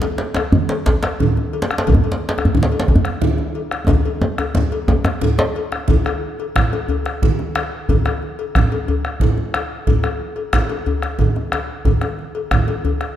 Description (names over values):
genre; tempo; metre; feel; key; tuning
west african traditional, West African drum ensemble; 120 BPM (dotted quarters); 12/8; straight; none; none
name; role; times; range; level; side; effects
cowbell; percussion; 0.0-13.0 s; none; -27 LUFS; left 6 dB; none
djembe; percussion; 0.0-5.5 s; none; -19 LUFS; equal; none
bombo; percussion; 0.4-13.2 s; none; -20 LUFS; equal; none
congas; percussion; 0.4-12.8 s; none; -23 LUFS; right 4 dB; none
djembe; percussion; 0.4-13.2 s; none; -23 LUFS; left 3 dB; none
room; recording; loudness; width
moderate scoring stage reverb, RT60 1.6 s; dark, warm production; -16 LUFS; side -11 dB against mid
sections
0.0-5.9 A section; 5.9-13.2 A section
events
drum fill 3.9-5.9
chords
none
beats
0.35 0.86 1.36 | 1.87 2.37 2.88 3.38 | 3.88 4.38 4.88 5.39 | 5.89 6.39 6.89 7.38 | 7.88 8.38 8.88 9.38 | 9.87 10.37 10.87 11.36 | 11.86 12.35 12.84